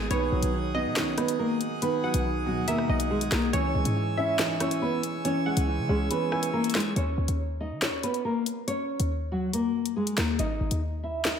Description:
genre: hip hop, drill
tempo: 140 BPM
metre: 4/4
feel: half-time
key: Eb phrygian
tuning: A4 = 440 Hz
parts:
  - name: nylon-string guitar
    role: melody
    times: 0.0-11.4 s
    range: F#3 to Fb5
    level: -29 LUFS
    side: left 1 dB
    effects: low-pass filter, tape echo
  - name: dark grand piano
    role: accompaniment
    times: 0.0-7.0 s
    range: Ab2 to Fb4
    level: -31 LUFS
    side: right 4 dB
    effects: low-pass filter
  - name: pipe organ, full organ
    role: sustained chords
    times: 0.0-6.9 s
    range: Ab4 to Fb6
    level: -36 LUFS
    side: equal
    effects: none
  - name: short 808-style bass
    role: bass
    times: 0.0-11.4 s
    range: Ab1 to Eb3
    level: -29 LUFS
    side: left 1 dB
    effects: none
  - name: glassy wavetable pluck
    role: second line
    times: 0.1-6.5 s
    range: Db5 to Ab5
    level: -35 LUFS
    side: left 1 dB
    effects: chorus, tape echo
  - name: drill drum kit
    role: drums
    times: 0.1-11.4 s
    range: handclaps, hi-hat, rim click, snare drum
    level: -31 LUFS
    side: left 1 dB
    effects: none
room: moderate plate reverb, RT60 1.7 s, small room ambience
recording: dreamy mix soaked in reverb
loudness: -25 LUFS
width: side -7 dB against mid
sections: 0.0-7.0 A section; 7.0-11.4 B section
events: kick muted 6.1-7.0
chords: 0.1 B; 3.5 Dbm; 7.0 Ebm7; 10.4 Ab5

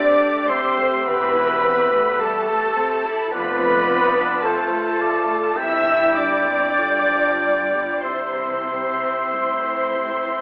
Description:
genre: classical, slow romantic movement for symphony orchestra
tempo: 47-54 BPM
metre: 4/4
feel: rubato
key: C major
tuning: A4 = 440 Hz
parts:
  - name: warm studio violin section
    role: melody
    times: 0.0-10.4 s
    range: A5 to E6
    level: -25 LUFS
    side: equal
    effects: none
  - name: bright large flute ensemble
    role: second line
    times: 0.0-10.4 s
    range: A4 to E5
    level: -24 LUFS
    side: equal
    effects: none
  - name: mellow clarinet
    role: second line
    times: 0.0-10.4 s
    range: A4 to E5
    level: -25 LUFS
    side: equal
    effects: none
  - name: mellow oboe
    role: second line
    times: 0.0-10.4 s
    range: C5 to G5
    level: -23 LUFS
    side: equal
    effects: none
  - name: rich chamber violin section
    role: second line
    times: 0.0-10.4 s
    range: A4 to E5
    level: -27 LUFS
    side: equal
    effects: none
  - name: rich symphonic viola section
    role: accompaniment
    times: 0.0-10.4 s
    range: C3 to G4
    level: -27 LUFS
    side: equal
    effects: none
  - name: warm French horn section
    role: sustained chords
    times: 0.0-10.4 s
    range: A3 to E4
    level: -28 LUFS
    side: equal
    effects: none
  - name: rich chamber double bass section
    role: bass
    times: 1.1-9.1 s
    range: E1 to C2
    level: -40 LUFS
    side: equal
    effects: none
  - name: warm chamber cello section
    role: bass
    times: 1.1-10.4 s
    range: E2 to C3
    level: -34 LUFS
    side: equal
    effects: none
room: wet scoring stage reverb, RT60 2.1 s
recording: telephone sound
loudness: -17 LUFS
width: side -34 dB against mid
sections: 0.0-10.4 A section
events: none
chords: 0.0 Am7; 3.3 Dm7/F; 5.6 C/G; 6.8 G7; 8.0 C

